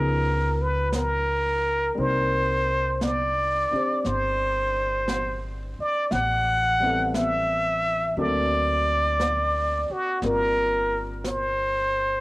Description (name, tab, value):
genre	jazz ballad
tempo	58 BPM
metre	4/4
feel	swing 68% on 8ths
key	unclear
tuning	A4 = 444 Hz
part	trumpet with plunger mute	melody	0.0-12.2 s	F#4 to F#5	-23 LUFS	equal	cassette tape
part	warm baby grand piano	accompaniment	0.0-12.2 s	E#3 to C5	-32 LUFS	left 2 dB	cassette tape
part	upright bass	bass	0.0-12.2 s	G1 to D2	-29 LUFS	equal	none
part	jazz brush drum kit	drums	0.9-12.2 s	brushed snare drum, hi-hat, snare drum	-34 LUFS	equal	cassette tape
room	light reverb, small room reverb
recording	home recording on cassette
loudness	-22 LUFS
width	side -21 dB against mid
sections	0.0-12.2 A section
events	none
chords	0.0 C#13; 2.0 Cm7; 6.1 Am9; 8.2 D7b13; 10.2 Gm7